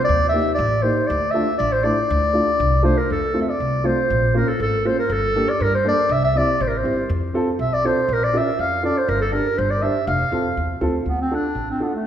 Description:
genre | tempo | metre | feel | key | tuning
klezmer | 120 BPM | 2/4 | straight | D minor, F major from 3.1 s | A4 = 439 Hz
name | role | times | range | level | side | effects
warm clarinet | melody | 0.0-12.1 s | A3 to F5 | -20 LUFS | equal | none
upright bass | bass | 0.1-11.7 s | F1 to G2 | -24 LUFS | equal | none
dark upright piano | accompaniment | 0.3-11.9 s | A3 to C5 | -24 LUFS | equal | none
room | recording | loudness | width
wet scoring stage reverb, RT60 1.9 s | recorded in a church or concert hall | -17 LUFS | side -10 dB against mid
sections
0.0-3.1 A section; 3.1-11.1 B section; 11.1-12.1 C section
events
none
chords
0.1 Eb; 1.1 Dm; 3.1 F; 4.1 Bbm; 5.1 Gm; 6.1 C; 7.1 F; 8.1 Bbm; 9.1 Gm; 10.1 F; 11.1 Dm

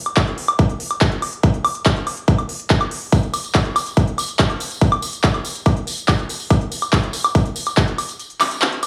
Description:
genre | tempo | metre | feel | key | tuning
trance | 142 BPM | 4/4 | straight | none | none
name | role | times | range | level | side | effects
big-room dance drum kit | drums | 0.1-8.9 s | handclaps, hi-hat, woodblock | -23 LUFS | equal | none
electronic kick drum | drums | 0.2-7.9 s | none | -19 LUFS | equal | none
tambourine | percussion | 3.1-8.9 s | none | -32 LUFS | equal | none
room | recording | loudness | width
light reverb | studio ambience | -19 LUFS | mono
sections
0.0-8.9 A section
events
kick drops out 8.2-8.9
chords
none

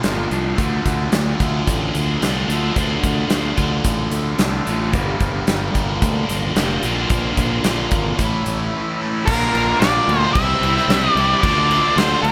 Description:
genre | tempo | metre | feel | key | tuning
classic rock | 110 BPM | 4/4 | straight | D minor | A4 = 440 Hz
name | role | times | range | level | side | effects
cranked stack guitar | riff | 0.0-12.3 s | G2 to G4 | -26 LUFS | equal | overdrive, phaser
distorted electric guitar | riff | 0.0-12.3 s | G2 to E4 | -26 LUFS | equal | distortion
fuzz fingered electric bass | bass | 0.0-12.3 s | F1 to D2 | -25 LUFS | equal | overdrive
huge arena drum kit | drums | 0.0-12.3 s | crash cymbal, hi-hat, kick drum, snare drum | -24 LUFS | equal | none
octave-fuzz lead guitar | melody | 9.3-12.3 s | Bb4 to E5 | -20 LUFS | equal | distortion, slapback echo
bright tonewheel organ | sustained chords | 9.3-12.3 s | Bb3 to D5 | -35 LUFS | equal | none
room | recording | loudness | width
light reverb | none | -19 LUFS | mono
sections
0.0-9.3 A section; 9.3-12.3 B section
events
none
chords
0.0 Bb; 0.6 Dm; 4.9 Gm; 6.8 Bb; 8.2 A; 9.3 Bb; 10.4 C; 11.4 Dm

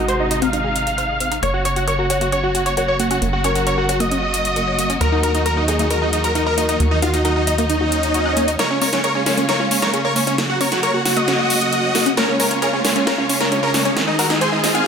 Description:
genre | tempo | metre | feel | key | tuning
uplifting trance | 134 BPM | 4/4 | straight | Db major | A4 = 439 Hz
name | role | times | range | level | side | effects
big supersaw lead | melody | 0.0-14.9 s | Db4 to F5 | -19 LUFS | equal | low-pass filter, tape echo
analog pluck | second line | 0.0-14.9 s | Db4 to F5 | -28 LUFS | equal | none
dark concert grand piano | second line | 0.0-7.5 s | Gb4 to Db5 | -26 LUFS | left 2 dB | digital delay
warm symphonic string section | sustained chords | 0.0-14.9 s | C3 to Ab4 | -24 LUFS | equal | none
tight sequencer bass | bass | 0.0-8.6 s | Gb1 to Eb2 | -24 LUFS | equal | none
tight sequenced synth | arpeggios | 0.1-14.8 s | Bb3 to Gb5 | -26 LUFS | left 2 dB | chorus, phaser, dub echo
big-room dance drum kit | drums | 0.1-14.8 s | hi-hat, snare drum | -23 LUFS | equal | high-pass filter on hats, high-pass filter on cymbals, high-pass filter on snare, high-pass filter on room
swell and riser | sound effects | 7.8-14.9 s | none | -28 LUFS | equal | none
room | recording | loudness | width
moderate lush hall reverb, RT60 1.8 s, digital ambience | none | -16 LUFS | side -6 dB against mid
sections
0.0-8.6 A section; 8.6-14.9 B section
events
swell 7.8-8.6; build-up 8.6-14.9; drum fill 8.6-14.9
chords
0.0 Ab; 1.4 Gb; 5.0 Ebm; 8.6 Db6; 10.4 Gb; 12.2 Db6; 14.0 Ab

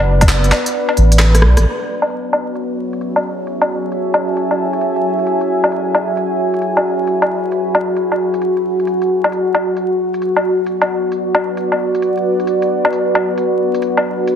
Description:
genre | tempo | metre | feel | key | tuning
future garage | 133 BPM | 4/4 | swing 66% on 16ths | F# minor | A4 = 440 Hz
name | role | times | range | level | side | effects
deep dark ambient pad | sustained chords | 0.0-14.4 s | F#4 to B5 | -16 LUFS | equal | chorus, built-in reverb, sidechain pumping
warm sub bass | bass | 0.0-1.6 s | F#1 to B1 | -10 LUFS | equal | sidechain pumping
garage drum kit | drums | 0.2-14.4 s | handclaps, hi-hat, rim click, woodblock | -18 LUFS | left 1 dB | low-pass filter on hats, low-pass filter on perc, low-pass filter on snare, low-pass filter on room
room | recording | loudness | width
moderate recital hall reverb, RT60 1.6 s, digital ambience | heavily compressed radio sound, multiband compression, vinyl crackle | -14 LUFS | side -8 dB against mid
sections
0.0-1.7 A section; 1.7-14.4 B section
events
drum fill 1.2-1.7; band accent 1.5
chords
0.0 Bm; 1.7 F#m7; 8.9 Bm/F#

